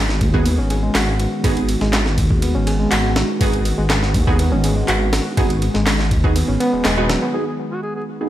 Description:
breakbeat, breaks; 122 BPM; 4/4; straight; G# minor; A4 = 440 Hz
phased analog pad; sustained chords; 0.0-8.3 s; D#3 to F#4; -26 LUFS; equal; phaser, chorus, sidechain pumping
overdriven reed electric piano; riff; 0.0-7.4 s; F#3 to G#4; -23 LUFS; equal; fast tremolo, ping-pong delay
dark detuned saw bass; bass; 0.0-7.2 s; D#1 to D#2; -19 LUFS; equal
breakbeat sampler-style drum kit; drums; 0.1-7.2 s; kick drum, ride cymbal, snare drum; -21 LUFS; equal
orchestra-hit-like synth stab; stabs; 0.3-8.3 s; B3 to B4; -26 LUFS; right 3 dB; built-in reverb, ping-pong delay
electronic handclaps; drums; 0.9-7.0 s; -24 LUFS; equal; overdrive
mellow alto saxophone; melody; 7.3-8.0 s; F#4 to G#4; -27 LUFS; left 1 dB; AM radio sound, ping-pong delay
light reverb, digital ambience; vinyl crackle; -15 LUFS; side -13 dB against mid
0.0-7.3 A section
band accent 6.9
0.0 G#m7

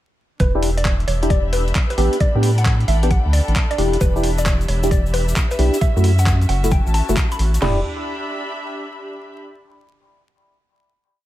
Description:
UK garage, two-step garage; 133 BPM; 4/4; swing 66% on 16ths; E dorian; A4 = 441 Hz
mallet-like synth pluck; melody; 0.4-7.8 s; B4 to B5; -27 LUFS; equal; chorus, phaser, dub echo
rubbery square bass; bass; 0.4-7.8 s; E1 to A2; -18 LUFS; equal
breakbeat sampler-style drum kit; drums; 0.4-7.6 s; handclaps, hi-hat; -27 LUFS; equal; studio reverb
garage drum kit; drums; 0.4-7.8 s; crash cymbal, kick drum, snare drum, toms; -19 LUFS; equal; studio reverb
rich studio string section; texture; 0.4-9.4 s; C#4 to B5; -30 LUFS; left 1 dB; sidechain pumping
percussive organ stab; stabs; 0.6-7.8 s; A3 to G4; -24 LUFS; equal; wide subtle chorus, cassette tape, dub echo
cabasa; percussion; 4.0-7.6 s; -35 LUFS; left 4 dB
light reverb, digital ambience; echo-heavy mix, vinyl crackle; -16 LUFS; side -14 dB against mid
0.4-7.6 groove; 7.6-9.4 final chord
0.4 Em7; 2.0 A9sus4; 3.8 Em7; 5.8 F#m7; 7.6 Em7

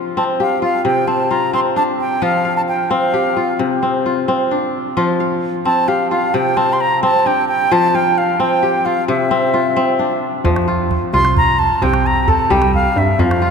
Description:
west african traditional, West African string and xylophone music; 88 BPM (dotted quarters); 12/8; straight; F major; A4 = 441 Hz
kora; arpeggios; 0.0-13.5 s; C3 to F5; -16 LUFS; left 2 dB
reedy concert flute; melody; 0.2-13.5 s; E5 to C6; -17 LUFS; right 1 dB
plucky analog bass; bass; 10.4-13.5 s; C2 to G2; -18 LUFS; right 1 dB
calabash; percussion; 10.4-13.5 s; -22 LUFS; right 2 dB
wet cathedral reverb, RT60 5.6 s; recorded in a church or concert hall; -13 LUFS; side -6 dB against mid
0.0-10.5 A section; 10.5-13.5 B section
0.0 F5; 0.9 C5; 2.2 F5; 3.6 C5; 5.0 F5; 6.3 C5; 7.7 F5; 9.1 C; 10.5 F5; 11.8 C5

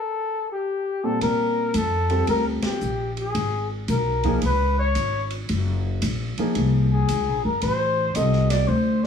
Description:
jazz, small-group swing and bop; 112 BPM; 4/4; swing 66% on 8ths; A4 = 441 Hz
mellow flugelhorn; melody; 0.0-9.1 s; G4 to Eb5; -24 LUFS; left 2 dB; plate reverb
warm baby grand piano; accompaniment; 1.0-8.7 s; Bb2 to A4; -26 LUFS; equal
upright bass; bass; 1.2-9.1 s; Gb1 to Bb2; -23 LUFS; left 1 dB
open jazz drum kit; drums; 1.2-9.1 s; hi-hat, kick drum, ride cymbal, snare drum; -33 LUFS; right 1 dB
moderate studio reverb, RT60 0.5 s; small room ambience; -20 LUFS; side -7 dB against mid
0.0-1.2 A section; 1.2-9.1 B section
break 0.0-1.2; band accent 2.5
0.1 Fsus2; 1.2 Bbmaj9; 3.4 Abm; 4.4 Db5; 5.5 Gbmaj7; 7.6 F9/A

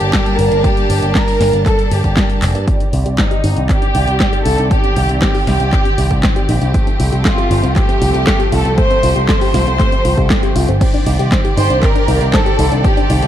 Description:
italo disco; 118 BPM; 4/4; straight; C dorian; A4 = 440 Hz
rich chamber violin section; melody; 0.0-13.3 s; Eb4 to C5; -18 LUFS; right 1 dB; low-pass filter, digital delay, shimmer reverb
rich studio string section; sustained chords; 0.0-13.3 s; Eb3 to A5; -22 LUFS; equal; low-pass filter, shimmer reverb
picked electric bass with an envelope filter; bass; 0.0-13.3 s; F1 to G2; -16 LUFS; equal
house drum kit; drums; 0.0-13.3 s; crash cymbal, handclaps, hi-hat, snare drum; -21 LUFS; left 1 dB; studio reverb
electronic kick drum; drums; 0.1-12.9 s; -16 LUFS; equal; studio reverb
soft round pluck; arpeggios; 2.7-13.3 s; A3 to C5; -22 LUFS; left 2 dB; chorus, digital delay, shimmer reverb
light reverb; dark, warm production; -11 LUFS; side -11 dB against mid
0.0-2.7 A section; 2.7-10.8 B section; 10.8-13.3 C section
drum fill 2.4; filter sweep on synth arpeggio sound 2.7-10.8; filter sweep on string section 2.7-10.8
0.0 Gmadd9; 2.7 Cmadd9; 6.7 Fadd9; 10.8 Cmadd9

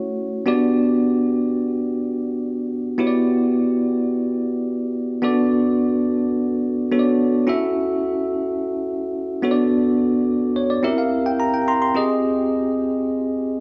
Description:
pop; 107 BPM; 4/4; straight; B minor; A4 = 440 Hz
bell-like tine electric piano; solo; 0.0-13.6 s; A3 to C6; -21 LUFS; equal
moderate lush hall reverb, RT60 3.0 s; small room reverb; -21 LUFS; mono
0.0-12.0 A section; 12.0-13.6 A section
tine electric piano fill 10.3-12.0
0.5 Gmaj7; 3.0 Em9; 5.2 Bm7; 7.5 F#m7; 9.4 Bm7; 10.8 C7; 12.0 Fm9

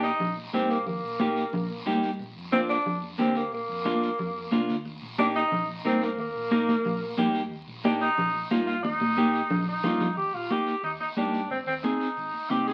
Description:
latin, cumbia; 180 BPM; 4/4; straight; Eb major; A4 = 440 Hz
warm tenor saxophone; second line; 0.0-12.7 s; Bb3 to Ab4; -30 LUFS; equal
clean electric guitar; accompaniment; 0.0-12.7 s; Bb3 to Bb4; -31 LUFS; equal
hollow-body short-scale fingered electric bass; bass; 0.0-12.7 s; Ab1 to G2; -44 LUFS; equal
guiro; percussion; 0.0-12.7 s; -46 LUFS; equal
congas; percussion; 0.2-12.7 s; -32 LUFS; equal
wet studio reverb, RT60 0.8 s; very old 78 rpm record, vinyl crackle; -27 LUFS; mono
0.0-10.2 A section; 10.2-12.7 B section
tenor saxophone solo 0.0-10.2, 10.2-12.7; drum fill 8.8-10.2
0.0 Eb; 2.2 Bb; 4.9 Eb; 11.5 Ab

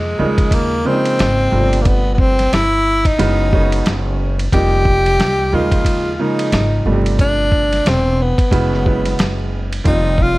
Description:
hip hop, jazz-hop; 90 BPM; 4/4; swing 59% on 16ths; A4 = 440 Hz
breathy tenor saxophone; melody; 0.0-10.4 s; Ab3 to G4; -17 LUFS; left 1 dB
warm upright piano; accompaniment; 0.0-10.4 s; B2 to G4; -20 LUFS; right 2 dB
upright bass; bass; 0.0-10.4 s; E1 to F2; -18 LUFS; equal
dusty soul sampler-style drum kit; drums; 0.4-10.4 s; hi-hat, kick drum, ride cymbal, snare drum; -19 LUFS; equal
studio ambience; vinyl crackle; -13 LUFS; side -19 dB against mid
0.0-10.4 A section
0.2 Eb9sus4; 1.5 G9sus4; 3.2 Gb9sus4; 4.5 F9sus4; 5.5 Eb9sus4; 6.9 G9sus4; 8.5 Gb9sus4; 9.9 F9sus4

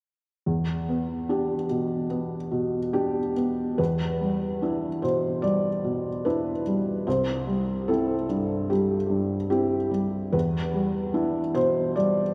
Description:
neoclassical minimalist piano; 73 BPM; 4/4; rubato; E minor; A4 = 440 Hz
felt-muted upright piano; solo; 0.5-12.3 s; C2 to D5; -26 LUFS; equal
wet church reverb, RT60 3.5 s; recorded in a church or concert hall; -26 LUFS; mono
0.5-3.8 A section; 3.8-12.3 B section
0.5 Em7; 7.1 C; 10.3 Em7

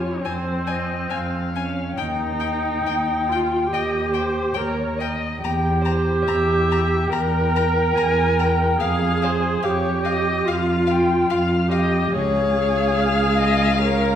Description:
classical, slow romantic movement for string quartet; 71 BPM; 4/4; rubato; F minor; A4 = 441 Hz
muted violin; second line; 0.0-14.2 s; C5 to Ab5; -25 LUFS; left 4 dB
muted viola; accompaniment; 0.0-14.2 s; C4 to Bb4; -22 LUFS; right 2 dB
muted cello; bass; 0.0-14.2 s; Db2 to F2; -23 LUFS; right 1 dB
muted violin; melody; 0.3-14.2 s; F5 to Bb5; -29 LUFS; left 6 dB
wet recital hall reverb, RT60 1.3 s; heard from further back in the room; -18 LUFS; side -9 dB against mid
0.0-14.2 A section
0.0 F5; 2.0 Eb; 5.4 Edim; 8.8 Fm; 12.1 Db

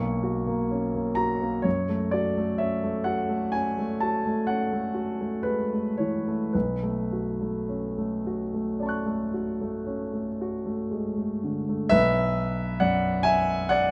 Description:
classical, impressionist solo piano; 52-69 BPM; 5/4; rubato; B dorian; A4 = 439 Hz
warm concert grand piano; solo; 0.0-13.9 s; B1 to F#6; -27 LUFS; equal
light reverb; close, detailed microphones; -27 LUFS; mono
0.0-11.9 A section; 11.9-13.9 B section
0.0 Bsus2; 1.7 F#m7; 6.5 Bm9; 11.9 Bm6

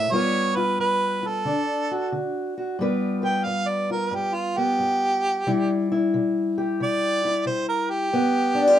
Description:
acoustic country blues, solo or duo; 90 BPM; 4/4; swing 66% on 8ths; G mixolydian; A4 = 440 Hz
warm harmonica; melody; 0.0-8.8 s; F4 to G5; -23 LUFS; right 2 dB
fingerpicked steel-string acoustic guitar; accompaniment; 0.0-8.8 s; G2 to B4; -23 LUFS; left 1 dB
light reverb; minimal, uncompressed stereo recording; -21 LUFS; side -11 dB against mid
0.0-2.8 A section; 2.8-8.8 B section
harmonica solo 2.8-8.8
0.1 G7; 1.4 D; 2.8 G7; 5.5 C; 8.1 G7

